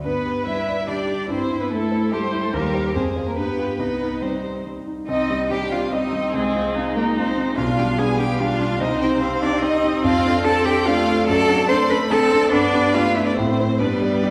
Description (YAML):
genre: quick classical-period movement for piano quintet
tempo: 145 BPM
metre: 3/4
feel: straight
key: C minor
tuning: A4 = 440 Hz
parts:
  - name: rich violin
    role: melody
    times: 0.0-14.3 s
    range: G4 to C6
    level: -29 LUFS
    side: equal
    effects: none
  - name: rich cello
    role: second line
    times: 0.0-14.3 s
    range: G3 to C5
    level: -25 LUFS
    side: equal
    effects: none
  - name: rich violin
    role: second line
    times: 0.0-14.3 s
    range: Ab3 to G5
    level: -32 LUFS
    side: equal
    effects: none
  - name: warm concert grand piano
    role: accompaniment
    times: 0.0-14.3 s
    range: B1 to D5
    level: -25 LUFS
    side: equal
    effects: none
  - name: warm viola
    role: accompaniment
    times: 0.0-14.3 s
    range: F#3 to C5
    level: -28 LUFS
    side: equal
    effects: none
room: wet recital hall reverb, RT60 1.3 s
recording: heard from further back in the room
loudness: -20 LUFS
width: mono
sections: 0.0-5.1 A section; 5.1-14.3 B section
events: none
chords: 0.0 G; 1.3 Am7/G; 2.5 Cm/Eb; 3.0 Fm; 3.4 G7; 3.8 Cm; 6.3 Fm/C; 7.6 G7/B; 8.8 Cm; 10.0 Dm7/F; 11.3 D7/F#; 12.5 G; 13.4 Am; 13.8 G